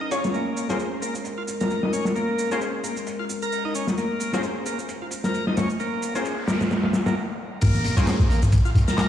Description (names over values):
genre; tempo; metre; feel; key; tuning
breakbeat, breaks; 132 BPM; 4/4; swing 56% on 16ths; Bb minor; A4 = 439 Hz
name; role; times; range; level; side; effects
warbly tape-like pad; sustained chords; 0.0-7.2 s; Ab3 to C5; -31 LUFS; left 1 dB; chorus, built-in reverb, vintage 12-bit sampler grit, sidechain pumping
bright tonewheel organ; riff; 0.0-9.1 s; Bb3 to Bb4; -29 LUFS; equal; overdrive, slow rotary speaker, low-pass filter, digital delay
orchestra-hit-like synth stab; stabs; 0.0-9.1 s; Db4 to Db5; -31 LUFS; left 2 dB; built-in reverb, digital delay
crunchy breakbeat drum kit; drums; 0.1-9.1 s; hi-hat, kick drum, snare drum; -25 LUFS; left 1 dB; low-pass filter on kick, low-pass filter on hats, low-pass filter on snare, low-pass filter on room
electronic shaker and handclaps; drums; 0.1-9.1 s; none; -37 LUFS; right 2 dB; low-pass filter on perc, low-pass filter on snare
noise sweep and downlifter; sound effects; 6.0-9.1 s; none; -35 LUFS; right 1 dB; none
warm 808-style bass; bass; 7.6-8.8 s; Bb1; -20 LUFS; equal; tube saturation
congas and bongos; percussion; 7.7-8.9 s; none; -29 LUFS; left 2 dB; none
room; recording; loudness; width
moderate lush hall reverb, RT60 2.0 s; played on a big sound system in a bare room, stone room reverb, small room ambience, faint mains hum; -22 LUFS; side -10 dB against mid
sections
0.0-7.6 A section; 7.6-9.1 B section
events
noise sweep 6.0-7.6; stop 7.2-7.6; drop 7.6-9.1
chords
0.0 Bbm7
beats
| 0.34 0.80 1.25 1.70 | 2.16 2.61 3.07 3.52 | 3.98 4.43 4.89 5.34 | 5.79 6.25 6.70 7.16 | 7.61 8.07 8.52 8.98